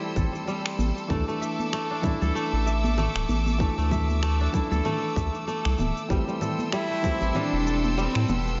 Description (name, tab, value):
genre	organic downtempo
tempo	96 BPM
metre	4/4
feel	swing 57% on 16ths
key	unclear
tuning	A4 = 440 Hz
part	felt-muted upright piano	accompaniment	0.0-8.6 s	E3 to A4	-36 LUFS	equal	sidechain pumping, delay
part	clear studio string section	sustained chords	0.0-8.6 s	A4 to E6	-37 LUFS	equal	sidechain pumping
part	kora	arpeggios	0.0-8.6 s	G3 to E5	-33 LUFS	equal	delay
part	bongos and congas	percussion	0.0-8.6 s	none	-36 LUFS	equal	none
part	round analog bass	bass	0.2-8.6 s	D1 to A2	-28 LUFS	equal	sidechain pumping
part	electronic congas, shaker and finger snaps	drums	0.2-8.6 s	none	-36 LUFS	equal	overdrive, studio reverb
part	electronic kick drum	drums	0.2-7.2 s	none	-32 LUFS	equal	studio reverb
part	warm cello	melody	6.7-8.6 s	B3 to E4	-30 LUFS	equal	delay
room	moderate plate reverb, RT60 1.6 s, small room ambience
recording	dreamy mix soaked in reverb, nothing above 7.5 kHz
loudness	-26 LUFS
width	mono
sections	0.0-8.6 A section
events	none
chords	0.0 Am7; 1.1 Dsus2; 6.1 Am7